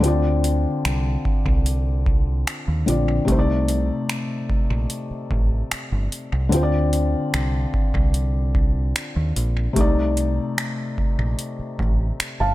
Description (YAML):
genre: contemporary R&B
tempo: 74 BPM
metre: 4/4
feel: straight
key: C dorian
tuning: A4 = 438 Hz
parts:
  - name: felt-muted upright piano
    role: accompaniment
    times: 0.0-12.5 s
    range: C3 to A5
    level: -24 LUFS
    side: left 2 dB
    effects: none
  - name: deep dub fingered electric bass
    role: bass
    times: 0.0-12.5 s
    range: G1 to Eb2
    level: -22 LUFS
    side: equal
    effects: none
  - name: booming analog drum machine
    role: drums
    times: 0.0-12.4 s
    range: finger snaps, hi-hat, kick drum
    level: -23 LUFS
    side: equal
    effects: overdrive
room: digital ambience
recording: echo-heavy mix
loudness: -19 LUFS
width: side -16 dB against mid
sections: 0.0-12.5 A section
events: none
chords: 0.0 Dm7; 3.3 Cm69; 6.5 Dm7; 9.8 Cm69